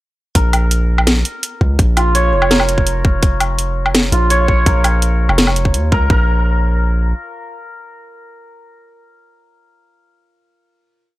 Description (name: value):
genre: half-time drum and bass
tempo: 167 BPM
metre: 4/4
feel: half-time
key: Bb minor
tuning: A4 = 438 Hz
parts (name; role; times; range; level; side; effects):
- santur; arpeggios; 0.3-8.9 s; F4 to Db5; -20 LUFS; equal; vintage 12-bit sampler grit, analog delay
- long sustained 808-style bass; bass; 0.4-7.1 s; F1 to Eb2; -15 LUFS; equal; tube saturation
- drum and bass drum kit; drums; 0.4-5.8 s; hi-hat, snare drum, woodblock; -15 LUFS; equal; overdrive
- electronic kick drum; drums; 0.4-6.2 s; none; -14 LUFS; equal; overdrive
room: little or no reverb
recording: dry, gritty hardware recording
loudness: -12 LUFS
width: side -17 dB against mid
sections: 0.3-6.1 drop; 6.1-9.0 final note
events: drop 0.3-6.1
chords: 0.3 Bb5; 6.1 N.C.